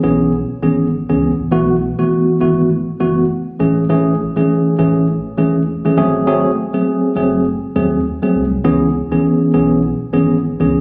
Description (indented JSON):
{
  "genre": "afrobeats",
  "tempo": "101 BPM",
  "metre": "4/4",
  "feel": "swing 58% on 16ths",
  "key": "C# minor",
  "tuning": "A4 = 440 Hz",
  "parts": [
    { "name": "tine electric piano", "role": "accompaniment", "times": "0.0-10.8 s", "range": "E3 to G#4", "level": "-16 LUFS", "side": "equal", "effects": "none" },
    { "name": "warm sub bass", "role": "bass", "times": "0.0-10.8 s", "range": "E1 to D#2", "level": "-26 LUFS", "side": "equal", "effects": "none" }
  ],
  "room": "moderate lush hall reverb, RT60 2.3 s",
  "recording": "recorded on a phone in the room, club reverb, compression",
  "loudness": "-15 LUFS",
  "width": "mono",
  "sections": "0.0-8.6 A section; 8.6-10.8 B section",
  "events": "none",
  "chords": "0.0 C#m7; 1.5 B7sus4; 3.6 Amaj7; 6.0 G#7b9; 8.6 C#m7",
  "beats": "0.33 0.93 | 1.52 2.11 2.71 3.30 | 3.90 4.49 5.08 5.68 | 6.27 6.87 7.46 8.05 | 8.65 9.24 9.84 10.43"
}